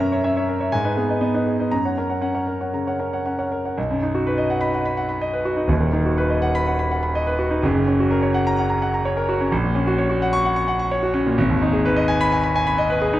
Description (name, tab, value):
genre	classical, virtuoso piano study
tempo	126 BPM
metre	4/4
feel	rubato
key	B major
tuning	A4 = 440 Hz
part	warm concert grand piano	solo	0.0-13.2 s	D#1 to C#6	-18 LUFS	equal	none
room	moderate scoring stage reverb, RT60 1.6 s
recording	none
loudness	-18 LUFS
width	side -14 dB against mid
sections	0.0-3.8 A section; 3.8-13.2 B section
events	none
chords	0.0 F#7; 0.7 G#m; 1.7 F#; 3.8 B; 5.7 B/D#; 7.6 F#; 9.5 F#/A#; 11.4 G#m